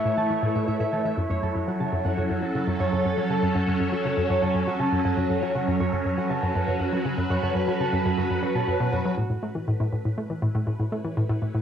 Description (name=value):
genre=ambient, sequencer-driven space music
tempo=120 BPM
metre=4/4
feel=straight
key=unclear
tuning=A4 = 438 Hz
part: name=phased string machine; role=sustained chords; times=0.0-11.6 s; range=F#3 to C#5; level=-26 LUFS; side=equal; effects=ensemble chorus, phaser, cassette tape
part: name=concert harp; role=arpeggios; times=0.0-11.4 s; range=F#4 to C#6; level=-30 LUFS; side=right 3 dB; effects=auto-pan, cassette tape, analog delay
part: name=hollow square pluck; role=riff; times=0.1-11.6 s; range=F#2 to A3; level=-27 LUFS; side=left 1 dB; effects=chorus, cassette tape, analog delay
room=wet small room reverb, RT60 0.6 s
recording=home recording on cassette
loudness=-23 LUFS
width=side -8 dB against mid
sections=0.0-9.2 A section; 9.2-11.6 B section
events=filter sweep on synth arpeggio sound 0.0-9.2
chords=0.0 A; 1.2 F#m; 9.2 A